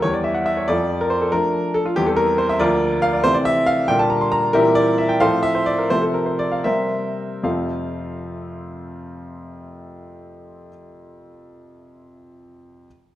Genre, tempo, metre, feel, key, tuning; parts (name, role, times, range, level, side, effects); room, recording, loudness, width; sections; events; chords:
classical-period piano sonatina; 73-94 BPM (dotted quarters); 6/8; straight; F major; A4 = 439 Hz
clear grand piano; solo; 0.0-12.9 s; D2 to C6; -18 LUFS; equal
moderate recital hall reverb, RT60 1.4 s; -17 LUFS; side -13 dB against mid
0.0-7.4 A section; 7.4-10.6 B section
slowing down 3.9-7.4
0.0 Em13; 0.7 Dm/F; 2.0 C/E; 2.6 Bb/D; 3.2 Am/C; 3.9 Gm/Bb; 4.5 C7/Bb; 5.2 F/A; 5.9 F/C; 6.6 C7; 7.4 F